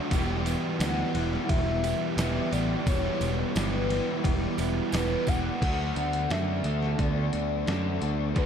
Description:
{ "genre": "rock, shoegaze and dream pop", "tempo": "87 BPM", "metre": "4/4", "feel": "straight", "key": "D major", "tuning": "A4 = 440 Hz", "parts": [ { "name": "electric guitar through a small old amp", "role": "arpeggios", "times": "0.0-8.5 s", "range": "F#3 to A4", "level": "-38 LUFS", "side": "right 3 dB", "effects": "wide subtle chorus, digital delay" }, { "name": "crunchy overdriven guitar", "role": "riff", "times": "0.0-8.5 s", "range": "D3 to G4", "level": "-33 LUFS", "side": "right 11 dB", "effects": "reverse reverb" }, { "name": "overdriven semi-hollow guitar", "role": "riff", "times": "0.0-8.5 s", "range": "E2 to G4", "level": "-33 LUFS", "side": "left 12 dB", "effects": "lush chorus" }, { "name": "raw garage guitar", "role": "riff", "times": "0.0-8.5 s", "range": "E2 to D4", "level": "-36 LUFS", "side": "equal", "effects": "overdrive" }, { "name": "picked electric bass", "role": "bass", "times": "0.1-8.5 s", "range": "E1 to F#2", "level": "-30 LUFS", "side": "equal", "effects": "none" }, { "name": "dusty soul sampler-style drum kit", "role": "drums", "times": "0.1-8.5 s", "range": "crash cymbal, hi-hat, kick drum, ride cymbal, snare drum", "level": "-32 LUFS", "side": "equal", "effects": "none" }, { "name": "tambourine", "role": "percussion", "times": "0.1-5.4 s", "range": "none", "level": "-45 LUFS", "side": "right 8 dB", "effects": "none" }, { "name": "pure sine lead", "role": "melody", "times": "0.8-8.5 s", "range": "B4 to F#5", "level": "-33 LUFS", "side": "left 2 dB", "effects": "chorus, phaser, digital delay" } ], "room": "digital ambience", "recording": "dark, warm production", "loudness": "-25 LUFS", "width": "side -8 dB against mid", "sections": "0.0-5.6 A section; 5.6-8.5 B section", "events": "none", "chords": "0.1 Em; 5.6 D6", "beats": "| 0.11 0.80 1.49 2.18 | 2.86 3.55 4.24 4.93 | 5.61 6.30 6.99 7.67 | 8.36" }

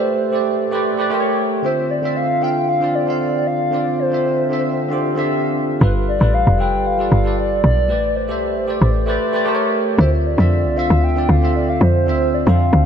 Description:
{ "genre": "amapiano", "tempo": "115 BPM", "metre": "4/4", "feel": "straight", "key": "D dorian", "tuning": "A4 = 440 Hz", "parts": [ { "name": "hollow clarinet-like synth lead", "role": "melody", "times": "0.0-12.9 s", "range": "B4 to G5", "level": "-21 LUFS", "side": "left 1 dB", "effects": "chorus, tape echo" }, { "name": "bell-like tine electric piano", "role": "accompaniment", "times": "0.0-12.9 s", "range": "D3 to F5", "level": "-19 LUFS", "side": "right 1 dB", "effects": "lush chorus" }, { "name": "woody log drum bass", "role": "bass", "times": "5.8-12.9 s", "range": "F1 to F2", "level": "-16 LUFS", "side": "equal", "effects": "none" } ], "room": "wet lush hall reverb, RT60 2.8 s", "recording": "dreamy mix soaked in reverb", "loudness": "-15 LUFS", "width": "side -8 dB against mid", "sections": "0.0-12.9 A section", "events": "none", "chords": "0.0 Am11; 1.1 A7b9; 1.6 Dm9; 5.8 G9; 7.9 Am11; 9.5 A7b9; 10.0 Dm9", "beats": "0.07 0.59 1.12 | 1.64 2.16 2.68 3.20 | 3.72 4.25 4.77 5.29 | 5.81 6.33 6.86 7.38 | 7.90 8.42 8.94 9.46 | 9.98 10.51 11.03 11.55 | 12.07 12.59" }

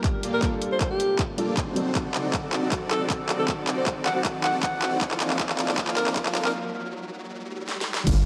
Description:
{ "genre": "future bass", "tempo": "157 BPM", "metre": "4/4", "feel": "half-time", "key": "unclear", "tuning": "A4 = 440 Hz", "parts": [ { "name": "warm grand piano", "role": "accompaniment", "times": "0.0-1.8 s", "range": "F#3 to A4", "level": "-33 LUFS", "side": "equal", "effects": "sidechain pumping, dub echo" }, { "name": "airy breathy pad", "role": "sustained chords", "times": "0.0-8.0 s", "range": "F3 to D5", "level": "-40 LUFS", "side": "equal", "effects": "none" }, { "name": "electronic kick drum", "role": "drums", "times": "0.0-8.1 s", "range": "none", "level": "-31 LUFS", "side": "equal", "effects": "none" }, { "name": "pop drum kit", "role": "drums", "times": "0.0-8.1 s", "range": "crash cymbal, handclaps, hi-hat, snare drum", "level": "-30 LUFS", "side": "equal", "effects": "high-pass filter on snare, high-pass filter on hats, high-pass filter on cymbals" }, { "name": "riser and downlifter", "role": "sound effects", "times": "0.2-8.3 s", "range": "none", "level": "-41 LUFS", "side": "equal", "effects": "none" }, { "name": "dense compressed supersaw", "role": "riff", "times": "0.2-8.3 s", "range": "Bb3 to D5", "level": "-33 LUFS", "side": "equal", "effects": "sidechain pumping, low-pass filter" }, { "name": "breathy alto saxophone", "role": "melody", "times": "0.3-6.5 s", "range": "G4 to F#5", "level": "-31 LUFS", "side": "equal", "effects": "sidechain pumping, tape echo" }, { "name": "Celtic harp", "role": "arpeggios", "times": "2.0-8.3 s", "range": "F4 to F#5", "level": "-38 LUFS", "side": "equal", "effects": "sidechain pumping, dub echo" }, { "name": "detuned saw bass", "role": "bass", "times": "8.1-8.3 s", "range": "G1", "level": "-23 LUFS", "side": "equal", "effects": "chorus, sidechain pumping" } ], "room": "moderate lush hall reverb, RT60 2.2 s", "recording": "dark, warm production, high-pass filter", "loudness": "-26 LUFS", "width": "mono", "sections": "0.0-8.1 A section", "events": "build-up 0.0-8.1; drum fill 0.0-6.5, 7.7-8.1; filter sweep 0.0-8.1; riser 0.2-8.1; break 6.5-8.1", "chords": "0.0 Gm9; 1.8 D7b9; 5.0 F7sus4", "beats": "0.04 | 0.43 0.81 1.19 1.57 | 1.96 2.34 2.72 3.10 | 3.48 3.87 4.25 4.63 | 5.01 5.39 5.78 6.16 | 6.54 6.92 7.30 7.69 | 8.07" }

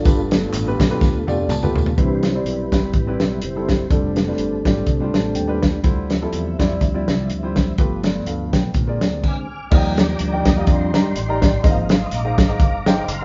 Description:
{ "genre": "uptempo gospel", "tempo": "124 BPM", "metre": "4/4", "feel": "swing 55% on 8ths", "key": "C major, Eb major from 9.7 s", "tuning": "A4 = 439 Hz", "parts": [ { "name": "warm grand piano", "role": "accompaniment", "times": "0.0-13.2 s", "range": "G2 to Bb5", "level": "-27 LUFS", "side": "equal", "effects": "none" }, { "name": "mellow tonewheel organ", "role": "sustained chords", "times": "0.0-13.2 s", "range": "D3 to F6", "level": "-27 LUFS", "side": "equal", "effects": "slow rotary speaker, chorus vibrato" }, { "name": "tambourine and handclaps", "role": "percussion", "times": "0.0-1.9 s", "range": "none", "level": "-39 LUFS", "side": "equal", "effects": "none" }, { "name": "fingered electric bass", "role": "bass", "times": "0.1-13.2 s", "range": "F1 to G2", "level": "-28 LUFS", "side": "equal", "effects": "none" }, { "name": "warm soul drum kit", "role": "drums", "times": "0.1-13.2 s", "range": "crash cymbal, hi-hat, kick drum, snare drum, toms", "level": "-20 LUFS", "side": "equal", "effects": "none" } ], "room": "moderate large studio reverb, RT60 1.2 s", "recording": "band playing live in one room, nothing above 7.5 kHz", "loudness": "-19 LUFS", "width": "mono", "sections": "0.0-2.0 A section; 2.0-9.7 B section; 9.7-13.2 A section", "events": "tonewheel organ solo 0.0-2.0, 2.0-9.7, 9.7-13.2; drum fill 1.0-2.0; grand piano fill 1.0-2.0, 4.9-5.8; stop 9.2-9.7", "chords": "0.1 G9; 2.0 Cmaj7; 3.9 F69; 5.8 Dm11; 7.8 G9; 8.8 Bb7; 9.7 Ebmaj7; 11.6 Ab69", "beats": "| 0.05 0.54 1.02 1.50 | 1.98 2.46 2.95 3.43 | 3.92 4.40 4.88 5.37 | 5.85 6.33 6.82 7.30 | 7.79 8.27 8.75 9.23 | 9.72 10.20 10.68 11.16 | 11.64 12.12 12.60 13.08" }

